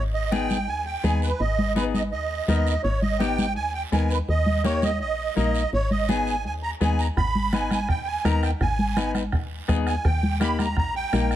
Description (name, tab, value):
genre	latin, cumbia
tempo	166 BPM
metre	4/4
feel	straight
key	G# harmonic minor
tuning	A4 = 442 Hz
part	musette accordion	melody	0.0-11.4 s	B4 to B5	-27 LUFS	right 4 dB	none
part	woody FM bass	bass	0.0-11.4 s	G#1 to D#2	-26 LUFS	equal	none
part	semi-hollow electric guitar	accompaniment	0.3-11.4 s	A#3 to B4	-30 LUFS	left 7 dB	none
part	congas	percussion	0.3-11.3 s	none	-27 LUFS	equal	none
part	guiro	percussion	0.3-11.4 s	none	-40 LUFS	right 6 dB	none
part	bombo	percussion	7.2-11.4 s	none	-27 LUFS	right 1 dB	none
room	light reverb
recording	none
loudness	-21 LUFS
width	side -12 dB against mid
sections	0.0-11.4 A section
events	none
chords	0.0 G#m; 4.3 D#; 5.7 G#m; 10.1 D#